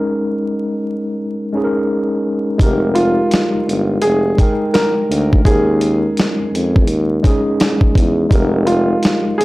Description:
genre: lo-fi hip hop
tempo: 84 BPM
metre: 4/4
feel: swing 63% on 16ths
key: F minor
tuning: A4 = 440 Hz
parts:
  - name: mellow tine electric piano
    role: accompaniment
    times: 0.0-9.4 s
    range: Ab3 to G5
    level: -18 LUFS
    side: equal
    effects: medium stereo tremolo, low-pass filter
  - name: warm tuba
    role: bass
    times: 2.6-9.4 s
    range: F1 to F2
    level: -17 LUFS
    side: equal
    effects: transformer saturation
  - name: dusty soul sampler-style drum kit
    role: drums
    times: 2.6-9.4 s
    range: hi-hat, kick drum, snare drum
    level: -15 LUFS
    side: equal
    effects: none
  - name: dark upright piano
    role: melody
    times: 2.9-9.4 s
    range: F4 to Bb4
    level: -18 LUFS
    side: equal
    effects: low-pass filter
room: little or no reverb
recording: dry, gritty hardware recording, transformer saturation, vinyl crackle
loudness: -13 LUFS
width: side -19 dB against mid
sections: 0.0-2.6 A section; 2.6-9.4 B section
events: none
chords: 0.0 Eb7sus4; 2.6 Fm11; 5.5 Eb7sus4; 8.3 Fm11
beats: 0.45 1.17 1.88 | 2.60 3.31 4.02 4.74 | 5.45 6.17 6.88 7.59 | 8.31 9.02

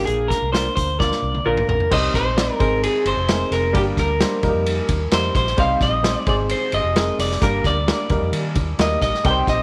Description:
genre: uptempo 1960s-style soul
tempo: 131 BPM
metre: 4/4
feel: straight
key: Eb major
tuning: A4 = 438 Hz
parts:
  - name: electric guitar through a small old amp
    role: melody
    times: 0.0-9.6 s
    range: G4 to G5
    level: -24 LUFS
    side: equal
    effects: none
  - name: dark upright piano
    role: accompaniment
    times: 0.0-9.6 s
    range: G3 to D5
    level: -27 LUFS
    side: equal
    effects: none
  - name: vintage muted fingered electric bass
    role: bass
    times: 0.0-9.6 s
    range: F1 to Eb3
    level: -27 LUFS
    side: equal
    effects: none
  - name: vintage drum kit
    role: drums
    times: 0.1-9.6 s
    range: crash cymbal, hi-hat, kick drum, ride cymbal, snare drum, toms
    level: -25 LUFS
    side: equal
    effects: none
  - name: electric guitar through a small old amp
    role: stabs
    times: 0.5-1.6 s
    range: F4 to D5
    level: -32 LUFS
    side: equal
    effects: none
room: light reverb, studio reverb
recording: none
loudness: -20 LUFS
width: mono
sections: 0.0-1.9 A section; 1.9-9.6 B section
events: drum fill 1.0-1.9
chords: 0.0 Bb; 1.9 Cm; 2.6 Ab; 3.8 Gm; 4.4 Eb; 5.6 Cm; 6.3 Ab; 7.4 Gm; 8.1 Eb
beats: | 0.08 0.54 1.00 1.46 | 1.92 2.38 2.83 3.29 | 3.75 4.21 4.67 5.12 | 5.58 6.04 6.50 6.96 | 7.41 7.87 8.33 8.79 | 9.25

